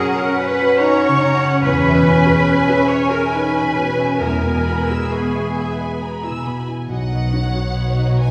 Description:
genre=cinematic, emotional film score for orchestra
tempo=66-73 BPM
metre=3/4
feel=rubato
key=unclear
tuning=A4 = 440 Hz
part: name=warm symphonic violin section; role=melody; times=0.0-8.3 s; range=F#5 to G#5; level=-34 LUFS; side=equal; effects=none
part: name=bright clarinet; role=second line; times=0.0-6.5 s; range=C#4 to E4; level=-31 LUFS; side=equal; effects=none
part: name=bright large flute ensemble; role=second line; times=0.0-6.9 s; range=F#5 to C#6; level=-31 LUFS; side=equal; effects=none
part: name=clear oboe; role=second line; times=0.0-6.0 s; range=G#4 to C#5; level=-30 LUFS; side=equal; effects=none
part: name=warm symphonic violin section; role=second line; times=0.0-8.3 s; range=C#5 to E6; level=-32 LUFS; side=equal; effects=none
part: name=felt-muted upright piano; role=accompaniment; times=0.0-8.3 s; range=B1 to E5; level=-28 LUFS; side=equal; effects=none
part: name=warm symphonic viola section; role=accompaniment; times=0.0-8.3 s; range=B3 to F#4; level=-29 LUFS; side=equal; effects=none
part: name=dark French horn section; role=sustained chords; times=0.0-8.3 s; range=F#3 to D#4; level=-25 LUFS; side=equal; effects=none
part: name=concert harp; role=arpeggios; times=0.0-8.3 s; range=E2 to G#5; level=-27 LUFS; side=equal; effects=none
part: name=rich symphonic cello section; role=bass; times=0.0-8.3 s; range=B2 to C#5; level=-22 LUFS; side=equal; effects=none
part: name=dark symphonic double bass section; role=bass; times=1.6-8.3 s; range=B1 to E2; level=-24 LUFS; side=equal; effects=none
room=wet scoring stage reverb, RT60 1.5 s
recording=heard from further back in the room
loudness=-17 LUFS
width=mono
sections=0.0-6.9 A section; 6.9-8.3 A section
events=none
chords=0.0 F#; 1.6 C#m7/E; 6.9 B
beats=0.80 | 1.63 2.47 3.32 | 4.21 5.10 6.00 | 6.89 7.76

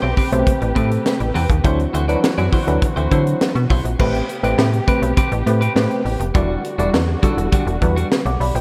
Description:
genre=early-eighties boogie funk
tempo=102 BPM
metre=4/4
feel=straight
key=unclear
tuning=A4 = 440 Hz
part: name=dark studio string section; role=sustained chords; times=0.0-8.6 s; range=C3 to B4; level=-30 LUFS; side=equal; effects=none
part: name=clean electric guitar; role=riff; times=0.0-8.6 s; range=G3 to D5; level=-29 LUFS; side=equal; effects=subtle chorus, slapback echo
part: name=slap-like FM bass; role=bass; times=0.0-8.6 s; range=E1 to D3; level=-22 LUFS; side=equal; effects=none
part: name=tine electric piano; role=accompaniment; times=0.2-8.6 s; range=F#3 to D6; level=-25 LUFS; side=equal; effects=overdrive, slapback echo
part: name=tight funk drum kit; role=drums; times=0.2-8.6 s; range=crash cymbal, hi-hat, kick drum, snare drum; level=-22 LUFS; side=equal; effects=none
room=moderate lush hall reverb, RT60 2.5 s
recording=big arena sound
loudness=-18 LUFS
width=mono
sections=0.0-4.0 A section; 4.0-8.6 B section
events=none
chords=0.0 Am9; 1.6 D9; 4.0 Am9; 6.3 Em9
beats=0.47 1.05 | 1.64 2.23 2.82 3.41 | 4.00 4.58 5.17 5.76 | 6.35 6.94 7.53 8.11

